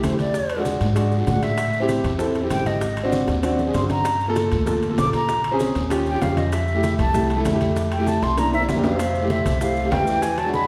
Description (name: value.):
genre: Afro-Cuban jazz.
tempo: 194 BPM.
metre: 4/4.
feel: straight.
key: F major.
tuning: A4 = 440 Hz.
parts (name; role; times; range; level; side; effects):
breathy mellow concert flute; melody; 0.0-10.7 s; C5 to D6; -27 LUFS; equal; none.
warm concert grand piano; accompaniment; 0.0-10.7 s; G#3 to A4; -25 LUFS; equal; none.
upright bass; bass; 0.0-10.6 s; Ab1 to A2; -27 LUFS; equal; none.
bongos; percussion; 0.0-10.7 s; none; -35 LUFS; equal; none.
congas; percussion; 0.0-10.7 s; none; -33 LUFS; equal; none.
guiro; percussion; 0.0-10.7 s; none; -44 LUFS; equal; none.
maracas; percussion; 0.0-10.7 s; none; -45 LUFS; equal; none.
timbales; percussion; 0.0-10.7 s; none; -37 LUFS; equal; none.
mellow tenor saxophone; second line; 8.8-10.7 s; C3 to G#3; -30 LUFS; equal; none.
room: wet recital hall reverb, RT60 1.5 s.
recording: recorded in a church or concert hall.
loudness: -21 LUFS.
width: mono.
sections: 0.0-9.0 A section; 9.0-10.7 B section.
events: flute solo 0.0-9.0; drum fill 3.1-4.1, 8.1-9.0.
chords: 0.3 E7; 1.6 Am7; 2.8 Ab7#11; 4.1 Gm7; 5.3 Bbm7; 5.9 Eb9; 6.5 Fmaj7; 8.4 C7; 9.0 Fmaj7.